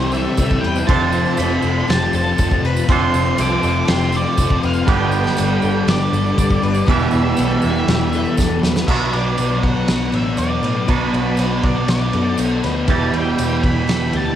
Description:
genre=rock, shoegaze and dream pop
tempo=120 BPM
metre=4/4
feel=straight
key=unclear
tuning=A4 = 440 Hz
part: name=octave-fuzz lead guitar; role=melody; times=0.0-14.4 s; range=B4 to D6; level=-24 LUFS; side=right 1 dB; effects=distortion, cassette tape
part: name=soft string machine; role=sustained chords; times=0.0-14.4 s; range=F4 to E6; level=-32 LUFS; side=equal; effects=none
part: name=picked twelve-string acoustic guitar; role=arpeggios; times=0.0-14.4 s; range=G4 to D5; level=-29 LUFS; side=left 6 dB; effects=wide subtle chorus, cassette tape, tape echo
part: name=distorted electric guitar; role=riff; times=0.0-14.4 s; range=B2 to G4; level=-29 LUFS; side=equal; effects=overdrive, cassette tape
part: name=thick fuzz guitar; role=riff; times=0.0-14.4 s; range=E2 to C4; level=-21 LUFS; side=left 7 dB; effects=distortion, analog chorus, cassette tape
part: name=twangy electric guitar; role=riff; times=0.0-14.4 s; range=E2 to A4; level=-22 LUFS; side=right 8 dB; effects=reverse reverb, cassette tape
part: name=vintage muted picked electric bass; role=bass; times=0.0-14.3 s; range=E1 to A2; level=-22 LUFS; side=equal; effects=none
part: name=tambourine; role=percussion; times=0.1-13.5 s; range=none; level=-37 LUFS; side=right 10 dB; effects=none
part: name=loose indie drum kit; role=drums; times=0.4-14.3 s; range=crash cymbal, kick drum, snare drum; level=-21 LUFS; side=equal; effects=cassette tape
room=light reverb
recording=home recording on cassette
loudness=-15 LUFS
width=side -10 dB against mid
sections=0.0-8.9 A section; 8.9-14.4 B section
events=drum fill 8.4-8.9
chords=0.0 C6; 0.9 F6; 4.9 G; 6.9 Em7; 8.9 Bm; 12.9 Em

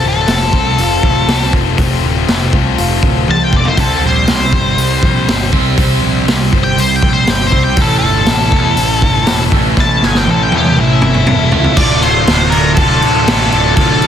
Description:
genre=quiet-loud alternative rock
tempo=120 BPM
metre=4/4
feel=straight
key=D minor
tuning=A4 = 440 Hz
part: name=octave-fuzz lead guitar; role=melody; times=0.0-14.1 s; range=E4 to A5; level=-15 LUFS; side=left 2 dB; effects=distortion, digital delay
part: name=electric guitar through a small old amp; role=arpeggios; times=0.0-3.8 s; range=F2 to C5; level=-22 LUFS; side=right 2 dB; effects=lush chorus
part: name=tight distorted guitar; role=riff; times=0.0-14.1 s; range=D2 to C5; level=-18 LUFS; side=left 12 dB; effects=distortion
part: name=fuzz picked electric bass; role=bass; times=0.0-14.1 s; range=D1 to E2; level=-17 LUFS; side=equal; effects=overdrive
part: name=raw garage drum kit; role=drums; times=0.3-14.1 s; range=crash cymbal, hi-hat, kick drum, snare drum, splash cymbal, toms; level=-13 LUFS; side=equal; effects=none
part: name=overdriven semi-hollow guitar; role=riff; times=3.8-14.1 s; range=D2 to F4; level=-18 LUFS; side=right 13 dB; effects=phaser
part: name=muted studio string section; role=sustained chords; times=11.8-14.1 s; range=A4 to D6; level=-27 LUFS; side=left 4 dB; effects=none
room=light reverb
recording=dense, heavily limited modern master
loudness=-9 LUFS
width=side -9 dB against mid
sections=0.0-11.8 A section; 11.8-14.1 B section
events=lead electric guitar solo 0.0-11.8; drum fill 3.3-3.8, 9.8-11.8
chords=0.0 F; 3.8 C; 7.8 A; 11.8 Dm

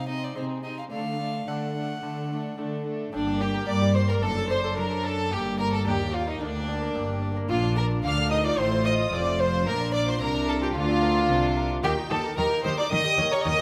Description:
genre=classical, baroque-style concerto movement with solo episodes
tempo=110 BPM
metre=4/4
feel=straight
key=G minor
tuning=A4 = 441 Hz
part: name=rich chamber violin section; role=melody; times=0.0-13.6 s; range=Ab4 to F6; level=-37 LUFS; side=equal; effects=none
part: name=rich violin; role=melody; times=0.0-13.6 s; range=D4 to F#5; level=-33 LUFS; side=equal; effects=none
part: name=rich chamber violin section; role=second line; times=0.0-13.6 s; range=D4 to F5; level=-32 LUFS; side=equal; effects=none
part: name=dark chamber viola section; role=accompaniment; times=0.0-13.6 s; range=A3 to Bb4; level=-36 LUFS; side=equal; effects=none
part: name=lute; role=accompaniment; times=0.0-13.6 s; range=D2 to Eb5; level=-37 LUFS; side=equal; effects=none
part: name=dark chamber cello section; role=bass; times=0.0-13.5 s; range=D2 to G3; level=-33 LUFS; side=equal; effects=none
part: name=rich chamber double bass section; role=bass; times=3.1-13.5 s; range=F1 to G2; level=-32 LUFS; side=equal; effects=none
room=moderate scoring stage reverb, RT60 1.8 s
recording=none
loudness=-26 LUFS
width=mono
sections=0.0-3.1 A section; 3.1-13.6 B section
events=none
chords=0.0 Ab/C; 0.9 D; 3.1 Gm; 4.2 D/F#; 5.3 Gm; 7.5 Bb; 8.6 F/A; 9.7 Bb; 11.8 Eb; 12.9 Eb7

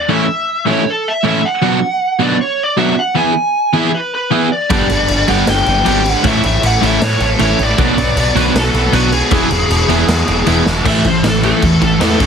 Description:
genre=punk rock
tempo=156 BPM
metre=4/4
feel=straight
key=A major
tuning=A4 = 439 Hz
part: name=lead guitar through a small cranked amp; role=melody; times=0.0-12.3 s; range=G#4 to G#5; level=-17 LUFS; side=equal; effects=overdrive
part: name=biting overdriven guitar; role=riff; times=0.1-12.3 s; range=F#2 to G#4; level=-18 LUFS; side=left 11 dB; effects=none
part: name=distorted electric guitar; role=riff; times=0.1-12.3 s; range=F#2 to G#4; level=-16 LUFS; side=right 11 dB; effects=overdrive
part: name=distorted electric guitar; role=riff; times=4.7-12.3 s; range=E2 to B3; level=-19 LUFS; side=right 1 dB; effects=overdrive
part: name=growling picked electric bass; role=bass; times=4.7-12.3 s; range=E1 to A2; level=-18 LUFS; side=equal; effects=overdrive
part: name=raw garage drum kit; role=drums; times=4.7-12.3 s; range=crash cymbal, kick drum, snare drum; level=-17 LUFS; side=left 1 dB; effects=none
room=light reverb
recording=heavily compressed radio sound, multiband compression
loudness=-11 LUFS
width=side -6 dB against mid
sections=0.0-10.9 A section; 10.9-12.3 B section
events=half time 0.0-10.9; drum fill 10.7; lead electric guitar solo 10.9-12.3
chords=0.1 A; 1.6 Bm; 3.2 E; 4.7 G; 6.2 A; 7.8 Bm; 9.3 E; 10.9 A5

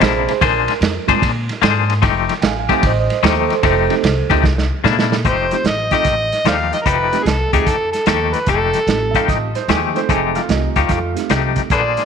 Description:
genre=electric blues shuffle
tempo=149 BPM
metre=4/4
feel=swing 66% on 8ths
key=F mixolydian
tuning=A4 = 440 Hz
part: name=mellow reed electric piano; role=accompaniment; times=0.0-11.7 s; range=Ab3 to Ab5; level=-22 LUFS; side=right 13 dB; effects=none
part: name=clean electric guitar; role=riff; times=0.0-12.0 s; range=C3 to C5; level=-18 LUFS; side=left 14 dB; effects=tremolo
part: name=upright bass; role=bass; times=0.0-12.0 s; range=F1 to Bb2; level=-21 LUFS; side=equal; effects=none
part: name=vintage drum kit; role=drums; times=0.0-12.0 s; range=hi-hat, kick drum, ride cymbal, snare drum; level=-20 LUFS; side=right 4 dB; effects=none
part: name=overdriven harmonica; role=melody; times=5.3-9.3, 11.7-12.1 s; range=Ab4 to F5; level=-19 LUFS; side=equal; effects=none
part: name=clear upright piano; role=second line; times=9.1-11.3 s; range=A3 to F5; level=-24 LUFS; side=right 8 dB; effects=none
room=moderate echo chamber reverb, RT60 1.7 s, small room ambience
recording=1960s-style stereo with parts hard left and right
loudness=-14 LUFS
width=side -6 dB against mid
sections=0.0-5.2 A section; 5.2-12.1 B section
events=drum fill 4.4-5.2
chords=0.4 Bb9; 2.0 F9; 4.4 C9; 5.2 F9

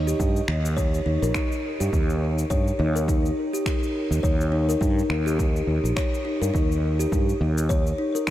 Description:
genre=organic downtempo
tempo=104 BPM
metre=4/4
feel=swing 57% on 16ths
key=Eb mixolydian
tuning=A4 = 440 Hz
part: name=kalimba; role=arpeggios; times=0.0-8.3 s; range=Eb4 to Db5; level=-26 LUFS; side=left 1 dB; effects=tape echo, shimmer reverb
part: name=fretless electric bass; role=bass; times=0.0-7.9 s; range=Bb1 to G2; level=-24 LUFS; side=equal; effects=tube saturation, sidechain pumping
part: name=electronic cabasa and finger snaps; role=drums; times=0.1-8.3 s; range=none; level=-35 LUFS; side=left 1 dB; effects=none
part: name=electronic kick drum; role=drums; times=0.2-8.3 s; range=none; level=-25 LUFS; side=equal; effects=none
room=moderate huge ambient reverb, RT60 7.9 s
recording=dreamy mix soaked in reverb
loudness=-21 LUFS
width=side -13 dB against mid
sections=0.0-8.3 A section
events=none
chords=0.0 Eb

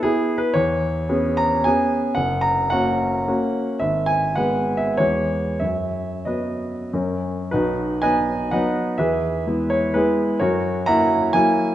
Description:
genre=classical, romantic triple-time dance for piano with dotted rhythms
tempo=88-141 BPM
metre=3/4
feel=rubato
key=B major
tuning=A4 = 435 Hz
part: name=warm baby grand piano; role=solo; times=0.0-11.7 s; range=F#1 to A#5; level=-18 LUFS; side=equal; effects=none
room=moderate recital hall reverb, RT60 1.6 s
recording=nothing above 10.5 kHz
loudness=-18 LUFS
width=side -12 dB against mid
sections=0.0-7.5 A section; 7.5-11.7 B section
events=none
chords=0.0 E; 0.6 C#m7/E; 2.2 F#; 3.8 G#m7; 5.0 E; 5.6 B/F#; 6.9 F#; 7.5 B; 9.0 E; 10.4 F#7

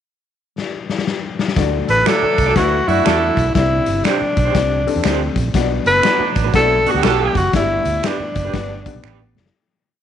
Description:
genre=uptempo 1960s-style soul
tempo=120 BPM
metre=4/4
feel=swing 64% on 8ths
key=D mixolydian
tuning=A4 = 441 Hz
part: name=raw garage drum kit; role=drums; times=0.6-9.5 s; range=hi-hat, kick drum, snare drum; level=-21 LUFS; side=left 3 dB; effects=none
part: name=dark upright piano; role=accompaniment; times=1.6-9.4 s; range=G2 to F#5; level=-24 LUFS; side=left 9 dB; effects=none
part: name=vintage muted fingered electric bass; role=bass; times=1.6-9.5 s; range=F#1 to F#2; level=-22 LUFS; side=right 2 dB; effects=none
part: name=breathy tenor saxophone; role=melody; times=1.9-9.1 s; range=D4 to B4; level=-17 LUFS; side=left 1 dB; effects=slapback echo
part: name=warm horn section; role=second line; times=1.9-7.4 s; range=F#3 to A4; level=-22 LUFS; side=right 13 dB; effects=slapback echo
part: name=electric guitar through a small old amp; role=stabs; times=2.1-9.2 s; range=D4 to D5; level=-26 LUFS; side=right 12 dB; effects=tube saturation, tremolo
part: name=finger snap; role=percussion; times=2.1-9.2 s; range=none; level=-28 LUFS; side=right 12 dB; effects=none
part: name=congas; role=percussion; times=5.8-9.4 s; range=none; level=-34 LUFS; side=right 10 dB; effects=none
room=light reverb, studio reverb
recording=1960s-style stereo with parts hard left and right, nothing above 10.6 kHz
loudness=-14 LUFS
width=side -9 dB against mid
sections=0.0-1.6 pickup bar; 1.6-9.5 verse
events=drum fill 0.6-1.6, 9.0-9.5; fade-out 7.5-9.5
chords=0.0 N.C.; 1.6 D; 3.6 Csus2; 5.5 Bm; 7.5 G

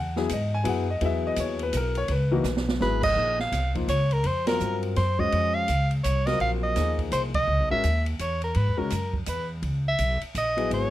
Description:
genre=modal jazz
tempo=167 BPM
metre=3/4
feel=swing 63% on 8ths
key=Bb phrygian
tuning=A4 = 440 Hz
part: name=warm concert grand piano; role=accompaniment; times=0.0-10.9 s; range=Fb3 to Ab5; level=-28 LUFS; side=left 4 dB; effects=none
part: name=upright bass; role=bass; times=0.0-10.9 s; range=Ab1 to Ab2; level=-26 LUFS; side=equal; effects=none
part: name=open jazz drum kit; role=drums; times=0.2-10.8 s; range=crash cymbal, hi-hat, kick drum, ride cymbal, snare drum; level=-34 LUFS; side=right 2 dB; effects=none
part: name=clear soprano saxophone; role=melody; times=2.8-10.9 s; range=Bb4 to F5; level=-26 LUFS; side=right 1 dB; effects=none
room=little or no reverb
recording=close, detailed microphones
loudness=-23 LUFS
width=side -14 dB against mid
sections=0.0-3.2 A section; 3.2-10.9 B section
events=drum fill 2.4-2.8; band accent 4.4, 7.3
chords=0.0 Dbm11; 3.2 Bbm11; 7.5 Dbm11

